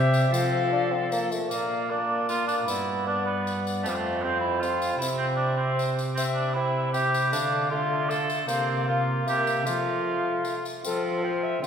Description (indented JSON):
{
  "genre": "classical, renaissance-style consort dance",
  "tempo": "154 BPM",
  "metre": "3/4",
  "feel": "straight",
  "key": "F major",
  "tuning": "A4 = 440 Hz",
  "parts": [
    { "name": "mellow alto recorder", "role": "melody", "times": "0.0-11.7 s", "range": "A4 to F5", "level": "-32 LUFS", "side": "left 6 dB", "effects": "none" },
    { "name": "warm cor anglais", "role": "second line", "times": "0.0-11.7 s", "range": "G3 to A4", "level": "-28 LUFS", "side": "right 3 dB", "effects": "none" },
    { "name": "warm bassoon", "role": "accompaniment", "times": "0.0-11.7 s", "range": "A3 to D4", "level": "-30 LUFS", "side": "left 1 dB", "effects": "none" },
    { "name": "rich cello", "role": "bass", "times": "0.0-11.7 s", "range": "F2 to F3", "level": "-29 LUFS", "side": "equal", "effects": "none" },
    { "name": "tambourine", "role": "percussion", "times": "0.1-11.7 s", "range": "none", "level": "-39 LUFS", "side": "left 4 dB", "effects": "none" }
  ],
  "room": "wet church reverb, RT60 2.9 s",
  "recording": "recorded in a church or concert hall",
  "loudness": "-24 LUFS",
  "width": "side -7 dB against mid",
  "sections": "0.0-1.5 A section; 1.5-10.8 B section",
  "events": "none",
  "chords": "0.3 F; 1.5 Bb; 2.7 G; 3.8 F5; 5.0 C; 7.3 Dm; 8.5 C7sus4; 9.7 F",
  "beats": "| 0.33 0.72 1.11 | 1.51 1.90 2.29 | 2.68 3.07 3.46 | 3.84 4.23 4.62 | 5.00 5.39 5.78 | 6.16 6.55 6.94 | 7.33 7.71 8.10 | 8.49 8.88 9.27 | 9.66 10.05 10.45 | 10.84 11.23 11.62"
}